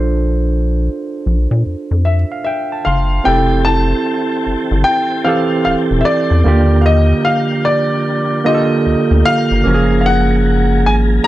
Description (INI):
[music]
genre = R&B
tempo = 75 BPM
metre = 4/4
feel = swing 63% on 16ths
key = F major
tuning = A4 = 441 Hz
[part]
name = barky tine electric piano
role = accompaniment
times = 0.0-11.3 s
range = D3 to C6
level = -16 LUFS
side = right 3 dB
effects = none
[part]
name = rubbery square bass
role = bass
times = 0.0-11.2 s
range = E1 to Bb2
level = -14 LUFS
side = left 1 dB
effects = none
[part]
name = warm concert grand piano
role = melody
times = 2.0-11.3 s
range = D5 to A5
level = -17 LUFS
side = left 2 dB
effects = none
[part]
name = tonewheel organ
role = sustained chords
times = 3.3-11.3 s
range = D3 to Bb4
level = -24 LUFS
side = left 1 dB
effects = slow rotary speaker, chorus vibrato
[sound]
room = light reverb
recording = dark, warm production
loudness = -12 LUFS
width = side -15 dB against mid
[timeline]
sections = 0.0-3.3 A section; 3.3-11.3 B section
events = tine electric piano fill 1.7-3.3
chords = 0.0 Bbmaj9; 3.3 Fmaj9; 6.5 Ebmaj9; 9.7 Gbmaj9